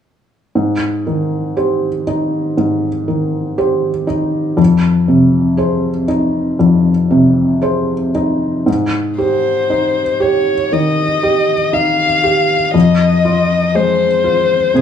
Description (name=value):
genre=neoclassical piano and strings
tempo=59 BPM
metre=4/4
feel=rubato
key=Ab major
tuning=A4 = 440 Hz
part: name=felt-muted upright piano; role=accompaniment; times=0.6-14.8 s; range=F2 to C5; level=-13 LUFS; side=equal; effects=none
part: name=dark violin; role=melody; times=9.2-14.8 s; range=Ab4 to F5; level=-14 LUFS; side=left 4 dB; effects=none
room=light reverb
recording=small room reverb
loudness=-12 LUFS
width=side -8 dB against mid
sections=0.6-8.7 A section; 8.7-14.8 B section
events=none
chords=0.6 Abmaj7; 4.6 Fm7; 8.7 Abmaj7; 12.7 Fm7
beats=| 0.56 1.58 2.58 3.59 | 4.59 5.59 6.60 7.63 | 8.68 9.70 10.72 11.73 | 12.74 13.75 14.75